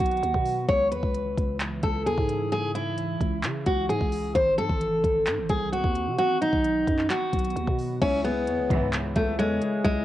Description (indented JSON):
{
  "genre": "hip hop, trap",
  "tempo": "131 BPM",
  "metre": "4/4",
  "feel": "half-time",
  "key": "C# minor",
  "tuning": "A4 = 441 Hz",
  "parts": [
    { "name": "picked steel-string acoustic guitar", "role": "melody", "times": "0.0-10.0 s", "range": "G#3 to C#5", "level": "-25 LUFS", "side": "equal", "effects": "low-pass filter, cassette tape" },
    { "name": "ethereal airy pad", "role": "sustained chords", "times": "0.0-10.0 s", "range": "C#3 to G#4", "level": "-36 LUFS", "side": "equal", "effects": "ensemble chorus, built-in reverb, cassette tape" },
    { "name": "growling 808-style bass", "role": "bass", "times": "0.0-10.0 s", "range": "G#1 to C#3", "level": "-31 LUFS", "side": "equal", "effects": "none" },
    { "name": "trap drum kit", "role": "drums", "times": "0.0-10.0 s", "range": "crash cymbal, handclaps, hi-hat, kick drum", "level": "-29 LUFS", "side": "equal", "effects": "cassette tape" },
    { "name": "dark baby grand piano", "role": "accompaniment", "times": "8.0-10.0 s", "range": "E4 to E5", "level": "-33 LUFS", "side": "left 4 dB", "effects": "low-pass filter, cassette tape" },
    { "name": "warm chamber string section", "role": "stabs", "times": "8.7-9.0 s", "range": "C#2 to E3", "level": "-31 LUFS", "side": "right 2 dB", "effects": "cassette tape, tape echo" }
  ],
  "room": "small room ambience",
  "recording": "home recording on cassette",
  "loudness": "-23 LUFS",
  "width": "side -13 dB against mid",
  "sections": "0.0-8.0 A section; 8.0-10.0 B section",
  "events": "none",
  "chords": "0.0 B; 0.7 C#m; 4.4 G#; 6.2 B; 8.0 C#m",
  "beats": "0.23 | 0.69 1.15 1.60 2.06 | 2.52 2.98 3.44 3.89 | 4.35 4.81 5.27 5.72 | 6.18 6.64 7.10 7.56 | 8.02 8.47 8.93 9.39 | 9.85"
}